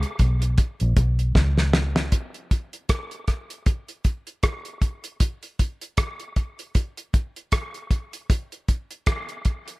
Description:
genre	dub reggae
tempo	78 BPM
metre	4/4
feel	swing 58% on 16ths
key	unclear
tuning	A4 = 440 Hz
part	vintage muted fingered electric bass	bass	0.0-2.1 s	A#1 to C#2	-21 LUFS	equal	none
part	damped 70s drum kit	drums	0.0-9.8 s	hi-hat, kick drum, rim click, snare drum	-22 LUFS	equal	none
room	little or no reverb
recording	none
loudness	-22 LUFS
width	side -22 dB against mid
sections	0.0-2.1 A section; 2.1-9.8 B section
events	drum fill 1.4-2.1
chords	none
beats	0.58 1.35 | 2.12 2.90 3.67 4.44 | 5.21 5.98 6.76 7.53 | 8.30 9.07

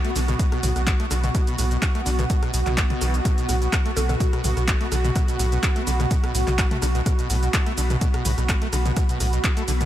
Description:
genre	acid house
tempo	126 BPM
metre	4/4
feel	swing 54% on 16ths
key	unclear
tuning	A4 = 440 Hz
part	warm analog pad	sustained chords	0.0-9.9 s	F#4	-30 LUFS	right 2 dB	chorus, phaser, sidechain pumping
part	acid bass, saw	riff	0.0-9.9 s	A2 to A3	-30 LUFS	equal	wide subtle chorus, sidechain pumping, tape echo
part	punchy analog drum machine	drums	0.0-9.9 s	handclaps, hi-hat, rim click, shaker, toms	-28 LUFS	equal	overdrive
part	granular cloud pad	texture	0.0-9.9 s	B3 to B5	-32 LUFS	left 2 dB	built-in reverb, ensemble chorus, sidechain pumping
part	warm sub bass	bass	0.2-9.9 s	B1	-23 LUFS	equal	sidechain pumping
part	electronic kick drum	drums	0.4-9.5 s	none	-22 LUFS	equal	overdrive
part	mallet-like synth pluck	melody	4.0-4.2 s	A4	-36 LUFS	right 1 dB	none
room	light reverb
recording	none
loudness	-20 LUFS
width	side -12 dB against mid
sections	0.0-9.9 A section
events	none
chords	0.0 B5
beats	0.39 0.87 | 1.35 1.82 2.30 2.77 | 3.25 3.73 4.20 4.68 | 5.16 5.63 6.11 6.58 | 7.06 7.54 8.01 8.49 | 8.96 9.44

